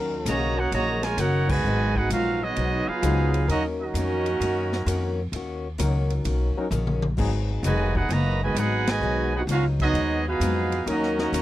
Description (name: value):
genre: jazz, big band swing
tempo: 130 BPM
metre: 4/4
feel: swing 67% on 8ths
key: Eb minor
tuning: A4 = 440 Hz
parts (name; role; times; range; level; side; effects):
- picked steel-string acoustic guitar; accompaniment; 0.0-11.4 s; Ab2 to Gb4; -32 LUFS; left 5 dB; none
- clear trombone section; sustained chords; 0.0-11.4 s; Gb3 to Bb4; -30 LUFS; left 3 dB; none
- upright bass; bass; 0.0-11.4 s; F1 to Gb2; -26 LUFS; equal; none
- brilliant trumpet section; melody; 0.3-11.4 s; Cb4 to Bb5; -27 LUFS; right 2 dB; none
- clear trombone section; second line; 0.3-11.4 s; Cb3 to Gb4; -28 LUFS; right 3 dB; none
- swinging big-band drum kit; drums; 0.3-11.4 s; crash cymbal, hi-hat, kick drum, ride cymbal, snare drum, toms; -32 LUFS; equal; none
room: little or no reverb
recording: dry, close 1970s-style studio recording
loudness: -22 LUFS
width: side -14 dB against mid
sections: 0.0-11.4 A section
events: band accent 1.4, 8.8; drum fill 6.7-7.2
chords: 0.0 Ebm7; 1.6 Abm7; 3.5 Ebm7; 7.2 Abm7; 10.9 Ebm7